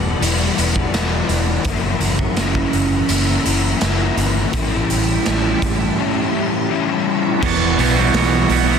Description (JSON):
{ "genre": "rock, shoegaze and dream pop", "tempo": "83 BPM", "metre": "4/4", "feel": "straight", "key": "unclear", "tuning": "A4 = 441 Hz", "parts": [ { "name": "string machine, full ensemble", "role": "sustained chords", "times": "0.0-8.8 s", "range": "G4 to A#5", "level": "-28 LUFS", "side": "right 1 dB", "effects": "phaser, ensemble chorus" }, { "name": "electric guitar at the edge of break-up", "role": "riff", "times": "0.0-8.8 s", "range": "E2 to F#4", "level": "-21 LUFS", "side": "right 10 dB", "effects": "reverse reverb" }, { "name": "overdriven semi-hollow guitar", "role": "riff", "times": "0.0-8.8 s", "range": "F#2 to E4", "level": "-20 LUFS", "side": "left 10 dB", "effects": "analog chorus" }, { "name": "vintage muted fingered electric bass", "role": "bass", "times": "0.0-8.8 s", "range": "E1 to B1", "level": "-21 LUFS", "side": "right 1 dB", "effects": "none" }, { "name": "raw garage drum kit", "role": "drums", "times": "0.2-8.7 s", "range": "crash cymbal, hi-hat, kick drum, snare drum", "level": "-21 LUFS", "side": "right 1 dB", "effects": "none" } ], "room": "light reverb, small room ambience", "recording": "dense, heavily limited modern master", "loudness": "-15 LUFS", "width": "side -7 dB against mid", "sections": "0.0-7.4 A section; 7.4-8.8 B section", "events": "none", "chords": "0.0 Emadd9; 1.6 F#7; 4.5 A5; 7.4 Emadd9" }